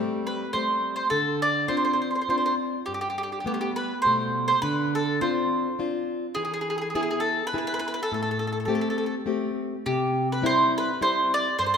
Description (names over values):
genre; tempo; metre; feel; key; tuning
italian folk, Italian serenade; 103 BPM; 3/4; swing 55% on 8ths; A minor; A4 = 439 Hz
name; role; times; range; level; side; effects
mandolin; melody; 0.0-11.8 s; G4 to D5; -25 LUFS; right 1 dB; none
nylon-string guitar; accompaniment; 0.0-11.8 s; G2 to G#4; -28 LUFS; left 2 dB; none
room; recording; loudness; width
wet scoring stage reverb, RT60 1.6 s; minimal, uncompressed stereo recording; -23 LUFS; side -7 dB against mid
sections
0.0-9.9 A section; 9.9-11.8 B section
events
none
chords
0.0 Am7; 1.1 Dm7; 2.9 Gadd9; 4.6 Dm7; 6.4 E; 8.1 Am7; 9.9 C